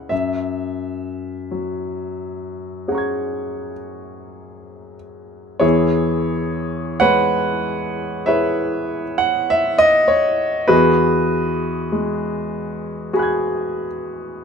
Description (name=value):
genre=classical, impressionist solo piano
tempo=42-52 BPM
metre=4/4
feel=rubato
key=E major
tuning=A4 = 440 Hz
part: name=clear grand piano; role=solo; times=0.0-14.4 s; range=E2 to G#6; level=-18 LUFS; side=equal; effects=none
room=light reverb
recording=none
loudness=-17 LUFS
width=side -6 dB against mid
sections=0.0-5.6 A section; 5.6-14.4 A section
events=none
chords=0.1 F#9; 5.6 E6; 10.7 G#m7/E